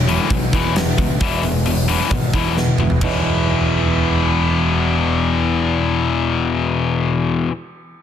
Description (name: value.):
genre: quiet-loud alternative rock.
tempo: 133 BPM.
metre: 4/4.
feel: straight.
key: E major.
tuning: A4 = 442 Hz.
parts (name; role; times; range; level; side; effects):
fingerpicked old ladder-braced acoustic guitar; arpeggios; 0.0-7.5 s; E2 to E4; -27 LUFS; right 10 dB; none.
tight distorted guitar; riff; 0.0-7.5 s; E2 to E3; -19 LUFS; left 6 dB; distortion.
fuzz picked electric bass; bass; 0.0-7.4 s; E1 to C#2; -21 LUFS; right 1 dB; overdrive.
huge arena drum kit; drums; 0.1-3.1 s; hi-hat, kick drum, ride cymbal, snare drum, toms; -22 LUFS; equal; none.
room: light reverb.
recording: dense, heavily limited modern master.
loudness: -15 LUFS.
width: side -9 dB against mid.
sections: 0.0-3.0 A section; 3.0-6.6 B section.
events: drum fill 2.6-3.0.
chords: 0.0 Eadd9.